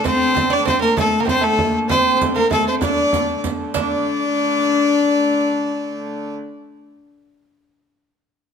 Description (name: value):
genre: medieval dance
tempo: 130 BPM (dotted quarters)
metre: 6/8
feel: straight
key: unclear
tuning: A4 = 435 Hz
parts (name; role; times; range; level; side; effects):
- clear fiddle; melody; 0.0-6.3 s; A4 to D5; -19 LUFS; equal; none
- dark viola da gamba; second line; 0.0-6.3 s; A3 to D4; -21 LUFS; left 5 dB; none
- lute; second line; 0.0-7.0 s; A3 to D4; -26 LUFS; right 10 dB; none
- warm hurdy-gurdy; drone; 0.0-6.4 s; D3 to A3; -29 LUFS; right 2 dB; none
- frame drum; percussion; 0.1-3.9 s; none; -26 LUFS; right 4 dB; none
- riq; percussion; 0.1-3.9 s; none; -29 LUFS; right 8 dB; none
room: light reverb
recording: close, detailed microphones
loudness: -16 LUFS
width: side -7 dB against mid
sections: 0.0-3.7 A section; 3.7-5.6 B section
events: none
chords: none